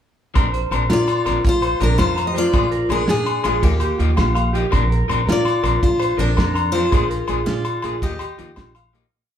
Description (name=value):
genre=highlife guitar band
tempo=110 BPM (dotted quarters)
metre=12/8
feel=straight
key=Bb major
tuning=A4 = 438 Hz
part: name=electric guitar at the edge of break-up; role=accompaniment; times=0.3-9.1 s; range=F3 to Ab4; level=-28 LUFS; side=left 5 dB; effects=none
part: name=electric guitar through a small old amp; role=arpeggios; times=0.4-9.0 s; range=F4 to Bb5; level=-27 LUFS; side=right 4 dB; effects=spring reverb
part: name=upright bass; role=bass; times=0.4-9.0 s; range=Bb1 to Bb2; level=-22 LUFS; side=right 1 dB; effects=none
part: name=warm soul drum kit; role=drums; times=0.4-9.0 s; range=hi-hat, kick drum, snare drum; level=-21 LUFS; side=right 1 dB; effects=none
part: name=agogo bells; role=percussion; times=0.4-8.9 s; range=none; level=-25 LUFS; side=left 6 dB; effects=none
part: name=picked steel-string acoustic guitar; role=melody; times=0.9-8.7 s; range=Ab3 to Eb5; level=-21 LUFS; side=left 2 dB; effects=none
part: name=breathy alto saxophone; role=second line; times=0.9-8.7 s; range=Ab3 to G4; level=-31 LUFS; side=right 6 dB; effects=none
room=moderate large studio reverb, RT60 0.8 s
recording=band playing live in one room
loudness=-16 LUFS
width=side -9 dB against mid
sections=0.3-9.1 A section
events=fade-out 6.9-9.1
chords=0.3 Bbadd9; 2.5 Bb7; 3.6 Ebadd9; 4.7 Bbadd9; 6.9 Bb7; 8.0 Ebadd9